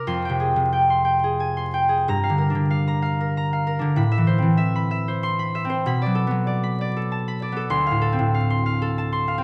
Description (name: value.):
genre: classical, solo harp piece.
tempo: 87-100 BPM.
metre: 3/4.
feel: rubato.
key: unclear.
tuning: A4 = 440 Hz.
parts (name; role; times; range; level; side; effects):
concert harp; solo; 0.0-9.4 s; D2 to C6; -22 LUFS; equal; none.
room: moderate recital hall reverb, RT60 1.5 s.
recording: vinyl crackle.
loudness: -22 LUFS.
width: mono.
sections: 0.1-9.4 A section.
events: none.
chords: 0.1 Fmadd9; 2.1 Gm7; 4.0 Amadd9; 5.9 Bm7; 7.7 Dm7.